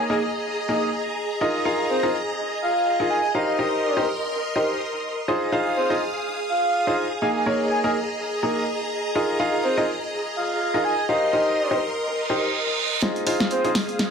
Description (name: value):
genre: piano house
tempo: 124 BPM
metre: 4/4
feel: swing 56% on 16ths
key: F minor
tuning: A4 = 440 Hz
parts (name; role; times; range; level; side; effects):
- breathy flute-like synth lead; melody; 0.0-13.7 s; C5 to Ab5; -26 LUFS; equal; wide subtle chorus, cassette tape, dub echo
- string machine, violins; sustained chords; 0.0-14.1 s; Ab4 to Eb6; -27 LUFS; equal; ensemble chorus
- clear grand piano; riff; 0.0-13.7 s; Bb3 to F5; -24 LUFS; equal; low-pass filter, dub echo
- reverse cymbal and riser; sound effects; 12.2-14.1 s; none; -26 LUFS; right 7 dB; none
- punchy analog drum machine; drums; 13.0-14.1 s; hi-hat, snare drum; -23 LUFS; equal; none
room: light reverb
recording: none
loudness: -21 LUFS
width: side -6 dB against mid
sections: 0.0-13.0 A section; 13.0-14.1 B section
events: reverse cymbal 12.2-13.0; build-up 13.0-14.1; drum fill 13.0-14.1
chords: 0.0 Absus2; 1.2 Bb7sus4; 3.3 Cm7; 5.3 Fm7; 7.2 Absus2; 8.9 Bb7sus4; 11.1 Cm7; 13.0 Fm7